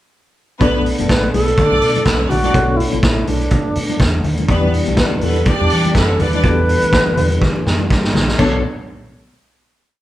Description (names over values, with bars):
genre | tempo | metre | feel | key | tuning
disco | 123 BPM | 4/4 | swing 56% on 16ths | B minor | A4 = 442 Hz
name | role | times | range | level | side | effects
clear studio string section | second line | 0.6-8.6 s | F#3 to D5 | -22 LUFS | equal | none
reed electric piano | accompaniment | 0.6-8.6 s | B2 to D5 | -22 LUFS | left 3 dB | tremolo
mellow tonewheel organ | sustained chords | 0.6-8.6 s | B2 to A4 | -25 LUFS | right 2 dB | chorus vibrato, fast rotary speaker
fingered electric bass | bass | 0.6-8.6 s | F#1 to E3 | -20 LUFS | equal | none
vintage drum kit | drums | 0.6-8.5 s | crash cymbal, hi-hat, kick drum, snare drum | -18 LUFS | equal | none
congas | percussion | 0.7-8.6 s | none | -25 LUFS | left 2 dB | none
alto flute | melody | 1.1-7.9 s | D4 to B4 | -19 LUFS | right 1 dB | none
room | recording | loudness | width
wet large studio reverb, RT60 1.0 s | band playing live in one room | -13 LUFS | side -14 dB against mid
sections
0.6-8.4 groove; 8.4-10.0 final chord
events
drum fill 7.4-8.4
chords
0.6 Bm7; 4.5 Em7; 8.4 Bm7